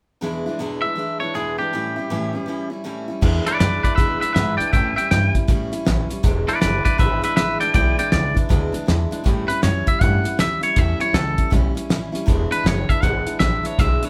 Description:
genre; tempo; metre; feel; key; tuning
rockabilly; 159 BPM; 4/4; swing 64% on 8ths; E mixolydian; A4 = 441 Hz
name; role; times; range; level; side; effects
picked steel-string acoustic guitar; accompaniment; 0.2-14.1 s; E2 to E4; -28 LUFS; equal; none
twangy electric guitar; melody; 0.8-14.1 s; G4 to G5; -24 LUFS; equal; none
upright bass; bass; 3.2-14.1 s; E1 to A2; -25 LUFS; equal; none
cloth-damped thuddy drum kit; drums; 3.2-14.1 s; crash cymbal, hi-hat, kick drum, snare drum; -23 LUFS; equal; none
room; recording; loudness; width
moderate large studio reverb, RT60 0.8 s; band playing live in one room; -20 LUFS; mono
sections
0.2-3.2 A section; 3.2-14.1 B section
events
none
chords
0.2 E7; 1.7 A7; 3.2 E7; 4.7 A7; 6.2 E7; 9.3 A7; 12.3 E7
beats
| 0.22 0.59 0.97 1.35 | 1.72 2.10 2.48 2.85 | 3.23 3.60 3.98 4.36 | 4.73 5.11 5.49 5.86 | 6.24 6.62 6.99 7.37 | 7.75 8.12 8.50 8.88 | 9.25 9.63 10.01 10.39 | 10.77 11.14 11.52 11.90 | 12.28 12.65 13.03 13.41 | 13.79

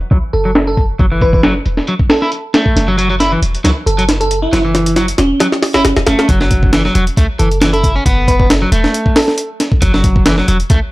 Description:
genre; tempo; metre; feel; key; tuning
breakbeat, breaks; 136 BPM; 4/4; swing 54% on 16ths; F# minor; A4 = 442 Hz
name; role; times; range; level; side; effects
warm 808-style bass; bass; 0.0-10.8 s; E1 to C#2; -16 LUFS; equal; none
breakbeat sampler-style drum kit; drums; 0.0-10.8 s; hi-hat, kick drum, snare drum; -13 LUFS; equal; low-pass filter on hats, low-pass filter on kick, low-pass filter on snare
electric guitar at the edge of break-up; riff; 0.1-10.8 s; E3 to E4; -17 LUFS; equal; tube saturation, low-pass filter, digital delay
bell-like FM electric piano; melody; 0.3-9.5 s; C#4 to B4; -18 LUFS; right 1 dB; chorus, small speaker sound, low-pass filter, digital delay
room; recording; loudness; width
moderate studio reverb, RT60 0.6 s; dark, warm production; -10 LUFS; side -19 dB against mid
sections
0.0-6.3 A section; 6.3-10.9 B section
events
build-up 0.0-6.3; filter sweep on drum 0.0-6.3; filter sweep on FM electric piano 0.0-6.3; drum fill 2.8-6.3; drop 6.3-10.9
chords
0.0 F#7(no3); 6.1 F#m (rootless); 6.3 F#m7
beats
0.12 0.56 | 1.00 1.44 1.88 2.32 | 2.76 3.20 3.65 4.09 | 4.53 4.97 5.41 5.85 | 6.29 6.73 7.17 7.62 | 8.06 8.50 8.94 9.38 | 9.82 10.26 10.70

